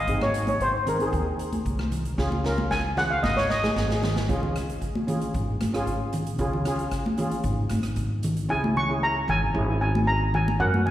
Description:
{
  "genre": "calypso",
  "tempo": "114 BPM",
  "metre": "4/4",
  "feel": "straight",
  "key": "unclear",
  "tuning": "A4 = 439 Hz",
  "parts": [
    { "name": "steel pan", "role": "melody", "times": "0.0-4.1, 8.5-10.9 s", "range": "G#4 to C#6", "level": "-26 LUFS", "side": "equal", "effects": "slapback echo, tape echo" },
    { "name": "upright bass", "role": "bass", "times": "0.0-10.9 s", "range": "G#1 to F#2", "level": "-28 LUFS", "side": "equal", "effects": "none" },
    { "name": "steel pan", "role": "accompaniment", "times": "0.1-10.8 s", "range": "B#3 to A#4", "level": "-31 LUFS", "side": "right 1 dB", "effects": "slapback echo" },
    { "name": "street-band drum kit", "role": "drums", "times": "0.1-8.5 s", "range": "hi-hat, kick drum, rim click, snare drum", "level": "-32 LUFS", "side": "equal", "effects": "none" },
    { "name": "congas", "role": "percussion", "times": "0.2-10.9 s", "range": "none", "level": "-30 LUFS", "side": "equal", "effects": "none" }
  ],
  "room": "light reverb, small room ambience",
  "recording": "live gig heard through the venue's PA, recital hall reverb",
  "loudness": "-23 LUFS",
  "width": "side -13 dB against mid",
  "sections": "0.0-4.3 A section; 4.3-8.5 B section; 8.5-10.9 C section",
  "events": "steel pan solo 0.0-4.3; drum fill 2.2-4.3",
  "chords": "0.1 G#; 2.2 C#; 8.5 C#m",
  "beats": "| 0.08 0.61 1.14 1.66 | 2.19 2.72 3.24 3.77 | 4.30 4.82 5.35 5.88 | 6.40 6.93 7.45 7.98 | 8.50 9.03 9.55 10.08 | 10.60"
}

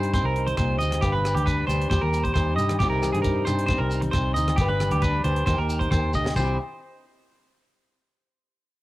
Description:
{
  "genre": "highlife guitar band",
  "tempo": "135 BPM",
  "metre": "4/4",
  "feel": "straight",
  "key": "C minor",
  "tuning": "A4 = 440 Hz",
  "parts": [
    { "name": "fingerpicked acoustic archtop guitar", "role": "accompaniment", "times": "0.0-6.6 s", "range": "G2 to B4", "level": "-29 LUFS", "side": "left 2 dB", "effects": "plate reverb" },
    { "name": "clean electric guitar", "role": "arpeggios", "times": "0.0-6.6 s", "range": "G4 to Eb5", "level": "-27 LUFS", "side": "right 2 dB", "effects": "wide subtle chorus, tape echo, plate reverb" },
    { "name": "vintage muted fingered electric bass", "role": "bass", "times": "0.0-6.6 s", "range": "G1 to G2", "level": "-25 LUFS", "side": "equal", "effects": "none" },
    { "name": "tight funk drum kit", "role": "drums", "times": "0.0-6.5 s", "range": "crash cymbal, hi-hat, kick drum, rim click, snare drum", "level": "-29 LUFS", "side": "equal", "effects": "cassette tape" },
    { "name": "agogo bells", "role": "percussion", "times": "0.1-6.5 s", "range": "none", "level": "-36 LUFS", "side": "left 6 dB", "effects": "none" },
    { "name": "congas", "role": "percussion", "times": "0.2-6.6 s", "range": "none", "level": "-35 LUFS", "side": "right 1 dB", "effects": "none" },
    { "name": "shekere", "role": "percussion", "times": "0.2-6.6 s", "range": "none", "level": "-31 LUFS", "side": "equal", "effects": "none" }
  ],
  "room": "light reverb",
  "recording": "home recording on cassette",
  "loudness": "-21 LUFS",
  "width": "side -17 dB against mid",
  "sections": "0.0-6.4 A section; 6.4-8.1 B section",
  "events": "drum fill 5.8-6.4",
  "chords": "0.0 Cm; 1.0 G; 1.9 Eb; 2.8 Cm; 4.6 G; 5.5 Eb; 6.4 C5",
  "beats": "0.14 0.58 | 1.03 1.47 1.92 2.36 | 2.81 3.25 3.69 4.14 | 4.58 5.03 5.47 5.92 | 6.36"
}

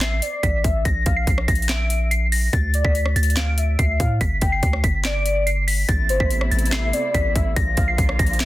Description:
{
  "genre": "hip hop, trap",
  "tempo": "143 BPM",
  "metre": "4/4",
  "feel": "half-time",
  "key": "A minor",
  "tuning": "A4 = 439 Hz",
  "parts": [
    { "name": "delicate synth tine bell", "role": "melody", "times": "0.0-8.5 s", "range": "A6 to D7", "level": "-25 LUFS", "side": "equal", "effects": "chorus, low-pass filter, tape echo" },
    { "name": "warm velvety synth lead", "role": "second line", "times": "0.0-8.5 s", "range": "C5 to G5", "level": "-27 LUFS", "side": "left 2 dB", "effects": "chorus, tape echo" },
    { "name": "long sustained 808-style bass", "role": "bass", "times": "0.0-8.5 s", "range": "G1 to A2", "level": "-21 LUFS", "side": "equal", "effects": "none" },
    { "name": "trap drum kit", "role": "drums", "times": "0.0-8.5 s", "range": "handclaps, hi-hat, kick drum, rim click, snare drum", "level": "-22 LUFS", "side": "equal", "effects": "overdrive" },
    { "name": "muted studio string section", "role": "sustained chords", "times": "5.9-8.5 s", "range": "C3 to F4", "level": "-30 LUFS", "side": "right 1 dB", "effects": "none" }
  ],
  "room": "little or no reverb",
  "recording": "dense, heavily limited modern master",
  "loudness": "-18 LUFS",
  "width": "side -16 dB against mid",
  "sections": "0.0-8.5 A section",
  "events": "none",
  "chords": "0.0 Am; 0.9 Bb; 2.5 D5; 4.2 G5; 5.9 Amadd9; 7.6 Bb",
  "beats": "0.01 0.43 | 0.85 1.27 1.69 2.11 | 2.53 2.95 3.37 3.79 | 4.21 4.63 5.05 5.47 | 5.89 6.31 6.73 7.14 | 7.57 7.99 8.40"
}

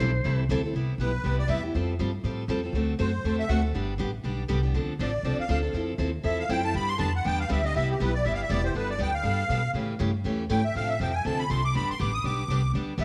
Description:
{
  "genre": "acoustic string swing (jazz manouche)",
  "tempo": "240 BPM",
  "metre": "4/4",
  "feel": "swing 56% on 8ths",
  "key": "C major",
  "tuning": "A4 = 439 Hz",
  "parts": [
    { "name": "bright clarinet", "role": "melody", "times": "0.0-0.5 s", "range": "C5", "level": "-35 LUFS", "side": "equal", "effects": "none" },
    { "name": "picked steel-string acoustic guitar", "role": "accompaniment", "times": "0.0-13.0 s", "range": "C3 to A4", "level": "-32 LUFS", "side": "equal", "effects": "none" },
    { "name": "upright bass", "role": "bass", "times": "0.0-13.0 s", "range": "E1 to B2", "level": "-30 LUFS", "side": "equal", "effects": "none" },
    { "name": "musette accordion", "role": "second line", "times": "1.0-13.0 s", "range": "G4 to Eb6", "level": "-32 LUFS", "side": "equal", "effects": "none" }
  ],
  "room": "moderate echo chamber reverb, RT60 1.7 s",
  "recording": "none",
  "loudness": "-27 LUFS",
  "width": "mono",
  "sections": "0.7-8.8 A section; 8.8-13.0 A section",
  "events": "accordion solo 0.7-13.0",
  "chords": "0.0 C6; 0.7 Cmaj7; 1.7 Fadd9; 2.7 D7; 3.7 G; 4.7 Dm7; 5.7 Fmaj7; 6.7 G; 7.7 Cmaj7; 8.8 Gadd9; 9.8 A7; 10.8 Dm7; 11.8 G",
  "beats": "0.00 0.25 0.50 | 0.75 1.00 1.25 1.50 | 1.75 2.00 2.25 2.50 | 2.75 3.00 3.25 3.50 | 3.75 4.00 4.25 4.50 | 4.75 5.00 5.25 5.50 | 5.75 6.00 6.25 6.50 | 6.75 7.00 7.25 7.50 | 7.75 8.00 8.25 8.50 | 8.75 9.00 9.25 9.50 | 9.75 10.00 10.25 10.50 | 10.75 11.00 11.25 11.50 | 11.75 12.00 12.25 12.50 | 12.75 13.00"
}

